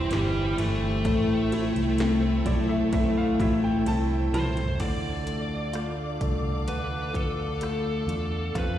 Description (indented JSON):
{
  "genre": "pop ballad",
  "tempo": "64 BPM",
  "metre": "4/4",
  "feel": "straight",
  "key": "unclear",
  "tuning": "A4 = 442 Hz",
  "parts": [
    { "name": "smooth overdriven lead guitar", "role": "melody", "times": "0.0-8.8 s", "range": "G3 to D5", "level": "-29 LUFS", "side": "left 3 dB", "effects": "none" },
    { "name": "clear baby grand piano", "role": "accompaniment", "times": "0.0-8.8 s", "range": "D3 to A5", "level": "-32 LUFS", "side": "left 2 dB", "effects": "slapback echo" },
    { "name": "rich studio string section", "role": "sustained chords", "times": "0.0-8.8 s", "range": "G4 to D6", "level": "-38 LUFS", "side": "equal", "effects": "none" },
    { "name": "picked steel-string acoustic guitar", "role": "arpeggios", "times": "0.0-8.8 s", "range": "A2 to G4", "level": "-32 LUFS", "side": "right 3 dB", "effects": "none" },
    { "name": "fingered electric bass", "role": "bass", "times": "0.0-8.8 s", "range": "G1 to F2", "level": "-29 LUFS", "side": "equal", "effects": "none" },
    { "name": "80s electronic pad drums", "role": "drums", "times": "0.1-8.8 s", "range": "crash cymbal, hi-hat, kick drum, ride cymbal, rim click, snare drum, toms", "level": "-32 LUFS", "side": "right 1 dB", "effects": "gated reverb on snare and toms" }
  ],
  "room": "digital ambience",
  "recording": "live gig heard through the venue's PA, recital hall reverb",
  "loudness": "-24 LUFS",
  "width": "side -11 dB against mid",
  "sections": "0.0-4.8 A section; 4.8-8.8 B section",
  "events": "grand piano fill 2.0-4.8; drum fill 3.9-4.8",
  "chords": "0.0 C; 1.1 Am; 4.8 Dm"
}